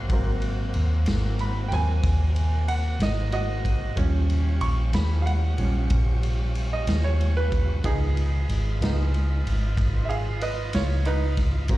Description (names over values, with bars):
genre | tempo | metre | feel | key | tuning
slow blues | 62 BPM (dotted quarters) | 12/8 | straight | unclear | A4 = 440 Hz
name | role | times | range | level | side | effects
mellow horn section | sustained chords | 0.0-11.8 s | Db3 to Gb4 | -41 LUFS | left 2 dB | none
tonewheel organ | sustained chords | 0.0-11.8 s | F3 to Bb5 | -38 LUFS | equal | slow rotary speaker
vintage muted fingered electric bass | bass | 0.0-11.8 s | Ab1 to Eb2 | -23 LUFS | equal | none
bright upright piano | accompaniment | 0.1-11.8 s | F3 to Db6 | -31 LUFS | right 4 dB | slapback echo
raw garage drum kit | drums | 0.1-11.8 s | kick drum, ride cymbal, snare drum | -29 LUFS | equal | none
room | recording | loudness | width
small room ambience | live gig heard through the venue's PA, club reverb | -22 LUFS | side -16 dB against mid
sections
0.0-11.8 A section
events
upright piano solo 0.0-11.8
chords
0.0 Ab9; 4.0 Eb9; 7.8 Db9